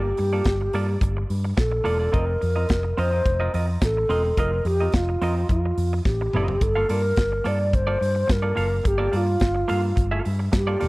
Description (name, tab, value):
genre	disco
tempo	107 BPM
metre	4/4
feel	straight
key	G minor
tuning	A4 = 440 Hz
part	mellow wooden-headed alto flute	melody	0.0-10.9 s	F4 to D5	-24 LUFS	equal	none
part	semi-hollow electric guitar	accompaniment	0.0-10.9 s	Bb3 to F5	-30 LUFS	right 3 dB	spring reverb
part	picked electric bass	bass	0.0-10.9 s	E1 to G2	-24 LUFS	equal	none
part	modern studio drum kit	drums	0.2-10.9 s	hi-hat, kick drum, snare drum, toms	-23 LUFS	equal	none
room	small room ambience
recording	dry, close 1970s-style studio recording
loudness	-20 LUFS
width	side -22 dB against mid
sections	0.0-6.6 A section; 6.6-10.9 B section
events	drum fill 6.1-6.6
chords	0.0 Gm9; 2.1 F7sus4; 6.6 Gm9